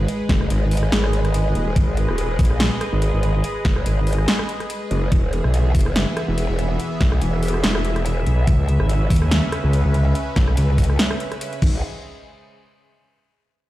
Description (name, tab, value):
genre	heavy wobble dubstep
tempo	143 BPM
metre	4/4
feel	swing 55% on 16ths, half-time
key	G# minor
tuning	A4 = 438 Hz
part	supersaw pad	sustained chords	0.0-11.8 s	C#3 to E5	-27 LUFS	equal	phaser, sidechain pumping
part	growl bass	bass	0.0-11.8 s	D#1 to D#2	-19 LUFS	equal	chorus, overdrive
part	big-room dance drum kit	drums	0.1-11.7 s	crash cymbal, hi-hat, rim click, snare drum	-24 LUFS	equal	studio reverb
part	electronic kick drum	drums	0.3-11.7 s	none	-18 LUFS	equal	studio reverb
room	light reverb, digital ambience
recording	played on a big sound system in a bare room, stone room reverb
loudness	-17 LUFS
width	side -15 dB against mid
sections	0.0-11.8 A section; 11.8-13.5 B section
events	none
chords	0.0 G#m; 5.1 E; 8.5 C#m7; 11.6 G#; 11.8 N.C.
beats	| 0.08 0.50 0.92 1.34 | 1.76 2.18 2.60 3.02 | 3.44 3.86 4.28 4.70 | 5.12 5.54 5.96 6.38 | 6.80 7.22 7.64 8.05 | 8.47 8.89 9.31 9.73 | 10.15 10.57 10.99 11.41